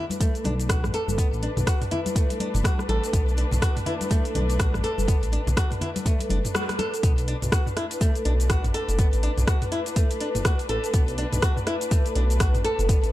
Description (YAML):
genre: afro house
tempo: 123 BPM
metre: 4/4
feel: swing 59% on 16ths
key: B minor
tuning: A4 = 443 Hz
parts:
  - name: muted studio string section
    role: sustained chords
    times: 0.0-13.1 s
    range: A3 to B4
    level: -33 LUFS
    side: left 2 dB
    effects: sidechain pumping
  - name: flamenco guitar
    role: arpeggios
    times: 0.0-13.0 s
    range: A3 to A4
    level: -30 LUFS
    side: equal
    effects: sidechain pumping, ping-pong delay
  - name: deep house drum kit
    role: drums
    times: 0.1-13.1 s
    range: cabasa, hi-hat, rim click, toms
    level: -30 LUFS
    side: equal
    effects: small room ambience
  - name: congas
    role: percussion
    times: 0.1-6.9 s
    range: none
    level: -33 LUFS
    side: left 2 dB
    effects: none
  - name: electronic kick drum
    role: drums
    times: 0.2-13.0 s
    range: none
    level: -22 LUFS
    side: equal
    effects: small room ambience
  - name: smooth synth bass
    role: bass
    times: 0.4-13.1 s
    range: F#1 to B1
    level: -25 LUFS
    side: equal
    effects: sidechain pumping
room: small room ambience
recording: dark, warm production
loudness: -21 LUFS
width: side -15 dB against mid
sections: 0.0-7.0 A section; 7.0-13.1 B section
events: kick drops out 6.5-7.0; band accent 6.5; drop 7.0-13.1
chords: 0.0 Bm7